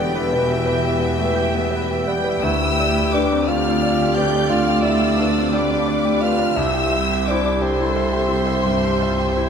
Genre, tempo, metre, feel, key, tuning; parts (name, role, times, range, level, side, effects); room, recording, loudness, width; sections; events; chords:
classical, romantic movement for piano and orchestra; 58 BPM (dotted quarters); 12/8; rubato; C major; A4 = 440 Hz
clear concert grand piano; melody; 0.0-9.5 s; C2 to E5; -22 LUFS; left 3 dB
rich studio violin section; melody; 0.0-9.5 s; D5 to G5; -31 LUFS; left 5 dB
warm studio violin section; second line; 0.0-9.5 s; D5 to G6; -26 LUFS; left 2 dB
mellow bassoon; accompaniment; 0.0-9.5 s; D3 to G4; -23 LUFS; right 1 dB
rich studio viola section; accompaniment; 0.0-9.5 s; E4 to G5; -29 LUFS; right 4 dB
warm French horn section; sustained chords; 0.0-9.4 s; G4 to C5; -30 LUFS; left 5 dB
warm studio cello section; bass; 0.0-9.5 s; C2 to E2; -25 LUFS; right 3 dB
warm studio double bass section; bass; 0.0-9.5 s; E1 to D2; -27 LUFS; right 3 dB
moderate scoring stage reverb, RT60 1.6 s; -16 LUFS; side -7 dB against mid
0.0-9.5 A section
0.0 Em; 2.4 G7/D; 6.6 C